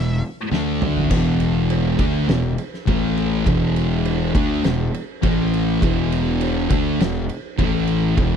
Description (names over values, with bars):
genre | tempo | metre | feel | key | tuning
stoner and doom metal | 102 BPM | 4/4 | straight | unclear | A4 = 440 Hz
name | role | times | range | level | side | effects
thick fuzz guitar | riff | 0.0-8.4 s | E2 to D4 | -22 LUFS | left 11 dB | distortion
thick fuzz guitar | riff | 0.0-8.4 s | E2 to D4 | -23 LUFS | right 11 dB | distortion
fuzz fingered electric bass | bass | 0.0-8.4 s | E1 to D2 | -23 LUFS | equal | overdrive
oversized low-tuned drum kit | drums | 0.5-8.3 s | crash cymbal, kick drum, ride cymbal, snare drum, toms | -23 LUFS | equal | none
room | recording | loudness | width
little or no reverb | dry, close 1970s-style studio recording | -17 LUFS | side -7 dB against mid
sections
0.0-1.1 A section; 1.1-8.4 B section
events
drum fill 0.5-1.1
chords
0.0 E5; 0.5 D5; 1.1 E5; 2.9 A5; 3.5 E5; 5.2 A5; 5.8 E5; 7.6 A5